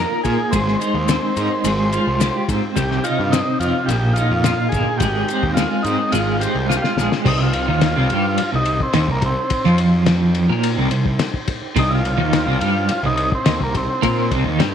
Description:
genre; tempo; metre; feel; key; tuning
psychedelic rock; 107 BPM; 4/4; straight; C minor; A4 = 440 Hz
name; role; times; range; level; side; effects
overdriven combo organ; melody; 0.0-14.3 s; Bb3 to C5; -22 LUFS; equal; slapback echo
mellow tonewheel organ; sustained chords; 0.0-14.7 s; Eb4 to Eb6; -32 LUFS; right 10 dB; slow rotary speaker, chorus vibrato
twelve-string electric guitar; riff; 0.0-14.7 s; Bb2 to Bb4; -19 LUFS; right 1 dB; tremolo, double-tracked left and right
fuzz picked electric bass; bass; 0.0-14.7 s; G1 to Bb2; -23 LUFS; equal; overdrive
cloth-damped thuddy drum kit; drums; 0.2-14.7 s; crash cymbal, kick drum, ride cymbal, snare drum; -24 LUFS; left 5 dB; none
maracas; percussion; 0.2-7.1 s; none; -34 LUFS; left 17 dB; none
room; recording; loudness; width
light reverb, small room ambience; 1960s-style stereo with parts hard left and right; -16 LUFS; side -8 dB against mid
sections
0.0-7.3 A section; 7.3-14.7 B section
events
drum fill 6.7-7.3; transistor combo organ solo 7.3-14.7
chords
0.0 Bbsus4; 0.5 Abadd9; 1.7 Fmadd9/Ab; 2.8 Cmadd9; 3.9 Bbsus4; 5.0 Abadd9; 6.1 Fmadd9/Ab; 7.3 Cm

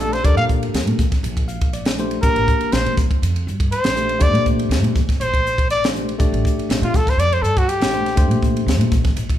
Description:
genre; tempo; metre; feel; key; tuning
electric jazz fusion; 121 BPM; 4/4; straight; Bb major; A4 = 438 Hz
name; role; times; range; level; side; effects
clear trumpet; melody; 0.0-8.4 s; F4 to F5; -20 LUFS; left 1 dB; none
bell-like tine electric piano; accompaniment; 0.0-8.9 s; A3 to F5; -26 LUFS; left 3 dB; none
upright bass; bass; 0.0-9.4 s; A1 to Bb2; -21 LUFS; equal; none
crisp fusion drum kit; drums; 0.0-9.4 s; hi-hat, kick drum, ride cymbal, snare drum; -20 LUFS; equal; none
room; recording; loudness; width
light reverb; band playing live in one room; -16 LUFS; side -11 dB against mid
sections
0.0-9.4 A section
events
trumpet solo 0.0-9.4; tine electric piano fill 1.2-2.2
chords
0.0 Bbmaj9

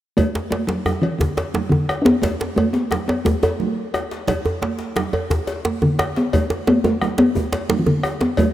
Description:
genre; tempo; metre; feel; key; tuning
west african traditional, West African drum ensemble; 117 BPM (dotted quarters); 12/8; straight; unclear; A4 = 440 Hz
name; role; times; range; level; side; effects
talking drum; melody; 0.2-8.5 s; D3 to D4; -19 LUFS; left 1 dB; none
bombo; percussion; 0.2-8.5 s; none; -26 LUFS; equal; none
congas; percussion; 0.2-8.5 s; none; -27 LUFS; right 5 dB; none
cowbell; percussion; 0.2-8.5 s; none; -29 LUFS; left 2 dB; none
djembe; percussion; 0.2-8.5 s; none; -30 LUFS; left 3 dB; none
djembe; percussion; 0.4-8.4 s; none; -24 LUFS; right 1 dB; none
room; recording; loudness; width
light reverb, small room ambience; rough home demo mix; -18 LUFS; side -13 dB against mid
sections
0.2-8.5 A section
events
none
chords
none

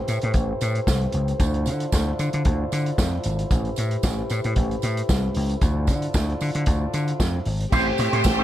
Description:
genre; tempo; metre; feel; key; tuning
disco; 114 BPM; 4/4; straight; A minor; A4 = 442 Hz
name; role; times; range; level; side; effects
mellow French horn section; sustained chords; 0.0-8.4 s; D3 to C5; -30 LUFS; left 1 dB; none
vintage slap bass; bass; 0.1-8.4 s; G#1 to D3; -24 LUFS; equal; none
vintage drum kit; drums; 0.1-8.4 s; crash cymbal, hi-hat, kick drum, snare drum; -25 LUFS; equal; none
tambourine; percussion; 0.1-8.4 s; none; -37 LUFS; right 9 dB; none
clear studio string section; second line; 7.7-8.4 s; A3 to C5; -23 LUFS; right 1 dB; none
electric guitar with an envelope filter; accompaniment; 7.7-8.4 s; C4 to C5; -24 LUFS; right 3 dB; lush chorus
room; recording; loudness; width
little or no reverb; none; -20 LUFS; side -12 dB against mid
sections
0.0-7.7 A section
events
none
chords
0.0 Am7; 1.4 Dm7; 3.5 Am7; 5.6 Dm7; 7.7 Am7

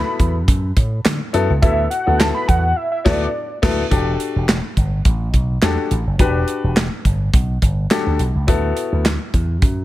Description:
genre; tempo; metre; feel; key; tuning
early-eighties boogie funk; 105 BPM; 4/4; swing 56% on 16ths; E minor; A4 = 444 Hz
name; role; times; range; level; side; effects
fat analog lead; melody; 0.0-3.6 s; D5 to B5; -21 LUFS; right 1 dB; chorus
warm grand piano; accompaniment; 0.0-9.0 s; B3 to B4; -22 LUFS; left 5 dB; none
slap bass with an envelope filter; bass; 0.2-9.8 s; E1 to D3; -19 LUFS; equal; none
modern studio drum kit; drums; 0.2-9.8 s; crash cymbal, handclaps, hi-hat, kick drum, snare drum; -18 LUFS; equal; none
room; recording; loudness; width
small room ambience; none; -15 LUFS; side -15 dB against mid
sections
0.0-3.9 A section; 3.9-9.8 B section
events
analog synth lead solo 0.0-3.9; band accent 2.8-3.9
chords
0.0 D69; 3.9 Em11; 8.5 D69

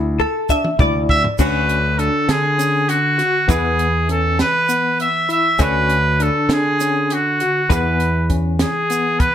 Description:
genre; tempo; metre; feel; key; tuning
progressive instrumental, band music in an uneven meter; 200 BPM (eighths); 7/8; straight; unclear; A4 = 439 Hz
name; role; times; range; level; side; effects
overdriven tine electric piano; arpeggios; 0.0-9.3 s; B3 to F#4; -25 LUFS; left 5 dB; fast tremolo, plate reverb
modern bright fingered electric bass; bass; 0.0-8.6 s; D2 to D3; -20 LUFS; equal; none
hollow-body jazz guitar; accompaniment; 0.2-9.3 s; D3 to E5; -24 LUFS; left 1 dB; double-tracked left and right
compact cocktail drum kit; drums; 0.2-9.3 s; crash cymbal, hi-hat, kick drum, snare drum, toms; -20 LUFS; right 1 dB; none
tube shaker; percussion; 0.5-9.3 s; none; -33 LUFS; right 8 dB; none
clear trumpet; melody; 1.1-9.3 s; F#4 to E5; -17 LUFS; right 1 dB; plate reverb
room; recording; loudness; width
moderate studio reverb, RT60 0.6 s; none; -15 LUFS; side -10 dB against mid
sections
0.0-1.4 A section; 1.4-9.3 B section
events
hollow-body jazz guitar solo 0.0-1.4; drum fill 0.2-1.4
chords
0.0 Dsus2; 1.4 Dmaj7; 3.5 E; 5.6 Dmaj7; 7.7 E

